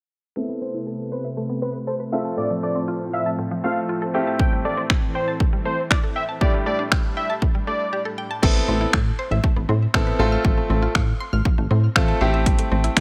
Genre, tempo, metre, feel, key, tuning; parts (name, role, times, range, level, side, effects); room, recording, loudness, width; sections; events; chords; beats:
dance-pop; 119 BPM; 4/4; straight; A minor; A4 = 439 Hz
fat analog lead; melody; 0.4-8.0 s; B4 to G5; -29 LUFS; equal; sidechain pumping, low-pass filter, delay
clear concert grand piano; accompaniment; 0.4-13.0 s; A2 to A4; -29 LUFS; equal; sidechain pumping, low-pass filter
soft string machine; sustained chords; 0.4-8.4 s; A2 to B4; -34 LUFS; equal; ensemble chorus, sidechain pumping, low-pass filter
mallet-like synth pluck; arpeggios; 0.4-13.0 s; A2 to F6; -33 LUFS; equal; chorus, sidechain pumping, low-pass filter, delay
pop drum kit; drums; 4.4-13.0 s; crash cymbal, finger snaps, hi-hat, kick drum; -22 LUFS; equal
plucky analog bass; bass; 8.4-13.0 s; A1 to A2; -23 LUFS; equal; sidechain pumping
light reverb; -22 LUFS; mono
0.4-8.4 A section; 8.4-13.0 B section
filter sweep 0.4-8.4
0.4 Amadd9; 2.1 F/A; 4.1 C6/A; 6.4 Gsus2/A; 8.4 Amadd9; 10.2 F/A; 12.2 C6/A
| 0.36 0.87 1.37 1.88 | 2.38 2.88 3.39 3.89 | 4.40 4.90 5.40 5.91 | 6.41 6.92 7.42 7.92 | 8.43 8.93 9.44 9.94 | 10.45 10.95 11.46 11.96 | 12.46 12.97